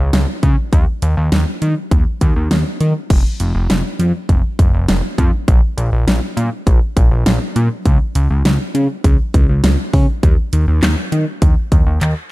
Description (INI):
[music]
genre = synth-pop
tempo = 101 BPM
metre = 4/4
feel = straight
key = unclear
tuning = A4 = 439 Hz
[part]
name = fat analog bass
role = bass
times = 0.0-12.1 s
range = F1 to Eb3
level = -15 LUFS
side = equal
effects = none
[part]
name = pop drum kit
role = drums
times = 0.1-12.2 s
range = crash cymbal, handclaps, hi-hat, kick drum, snare drum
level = -15 LUFS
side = equal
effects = none
[sound]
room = little or no reverb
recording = none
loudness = -13 LUFS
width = side -19 dB against mid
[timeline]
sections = 0.0-3.1 A section; 3.1-12.3 B section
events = drum fill 12.0-12.3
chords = none